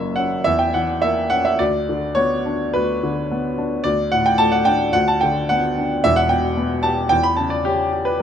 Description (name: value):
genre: classical, romantic character piece for solo piano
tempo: 109 BPM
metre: 4/4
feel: uneven beats, rubato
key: B minor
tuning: A4 = 440 Hz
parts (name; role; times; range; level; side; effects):
- warm baby grand piano; solo; 0.0-8.2 s; E1 to B5; -16 LUFS; equal; none
room: light reverb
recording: close, detailed microphones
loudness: -16 LUFS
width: side -8 dB against mid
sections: 0.0-8.2 A section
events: none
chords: 0.5 Edim7; 1.6 Bm/D; 3.9 D5; 4.9 Bm/D; 6.1 Em; 7.1 C#dim/E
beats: 0.46 1.03 | 1.59 2.17 2.75 3.31 | 3.85 4.40 4.95 5.50 | 6.05 6.59 7.12 7.66 | 8.21